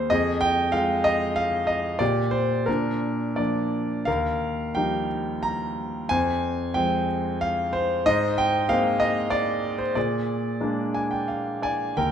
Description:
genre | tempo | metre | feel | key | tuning
classical, lyrical solo piano | 84-97 BPM | 3/4 | rubato | unclear | A4 = 438 Hz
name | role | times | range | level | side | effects
clear grand piano | solo | 0.0-12.1 s | Eb2 to Bb5 | -22 LUFS | equal | none
room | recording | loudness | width
moderate recital hall reverb, RT60 1.7 s | none | -22 LUFS | side -8 dB against mid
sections
0.0-12.0 A section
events
grand piano fill 10.6-12.0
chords
0.1 Fmadd9; 2.0 Bb69; 2.7 Bb; 4.1 Ebadd9; 6.1 Fm; 8.1 Abadd9; 10.0 Bb7

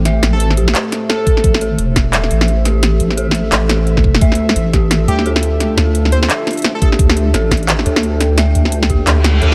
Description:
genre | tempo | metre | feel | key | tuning
half-time drum and bass | 173 BPM | 4/4 | swing 60% on 16ths, half-time | unclear | A4 = 440 Hz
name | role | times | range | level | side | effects
dark analog pad | sustained chords | 0.0-9.5 s | A3 to G5 | -25 LUFS | equal | chorus, sidechain pumping
dark detuned synth bell | arpeggios | 0.0-9.5 s | G4 to E5 | -25 LUFS | equal | chorus, delay
deep soft wobble bass | bass | 0.0-9.5 s | E1 to D2 | -16 LUFS | equal | chorus, tube saturation
drum and bass drum kit | drums | 0.1-9.5 s | handclaps, hi-hat, snare drum | -19 LUFS | equal | none
plucky unison lead | melody | 0.3-1.6, 5.1-6.9 s | G4 to C5 | -26 LUFS | equal | vintage 12-bit sampler grit, delay
electronic kick drum | drums | 1.3-9.0 s | none | -16 LUFS | equal | none
reverse cymbal | sound effects | 9.2-9.5 s | none | -21 LUFS | equal | none
room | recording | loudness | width
light reverb | none | -14 LUFS | mono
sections
0.0-9.5 A section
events
reverse cymbal 9.2-9.5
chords
0.0 Am; 4.2 Dmadd9

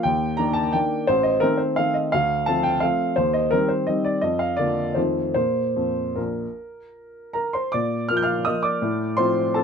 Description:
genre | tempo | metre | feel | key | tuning
classical, piano waltz | 144-189 BPM | 3/4 | rubato | Bb major | A4 = 440 Hz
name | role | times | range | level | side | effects
warm upright piano | solo | 0.0-9.6 s | A1 to G6 | -20 LUFS | equal | none
room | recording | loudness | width
little or no reverb | close, detailed microphones | -20 LUFS | side -6 dB against mid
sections
0.0-7.7 A section; 7.7-9.6 B section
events
none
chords
0.0 Ebmaj7; 1.1 Adim; 2.1 Dm7; 3.2 Cm/Eb; 4.2 Bb/F; 5.0 F7; 5.4 Bb5; 7.7 Bb; 8.8 F/A

